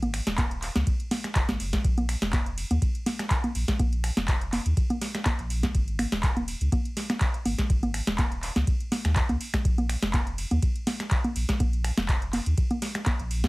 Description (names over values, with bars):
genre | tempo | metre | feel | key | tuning
acid house | 123 BPM | 4/4 | swing 54% on 16ths | Bb minor pentatonic | A4 = 440 Hz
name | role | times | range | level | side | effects
warm sub bass | bass | 0.0-13.5 s | Eb1 to Eb2 | -28 LUFS | equal | sidechain pumping
booming analog drum machine | drums | 0.0-13.5 s | congas, finger snaps, handclaps, hi-hat, ride cymbal, snare drum | -28 LUFS | equal | overdrive
electronic kick drum | drums | 0.4-13.5 s | none | -26 LUFS | equal | overdrive
room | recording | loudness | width
little or no reverb | heavily compressed radio sound | -24 LUFS | side -23 dB against mid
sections
0.0-13.5 A section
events
none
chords
none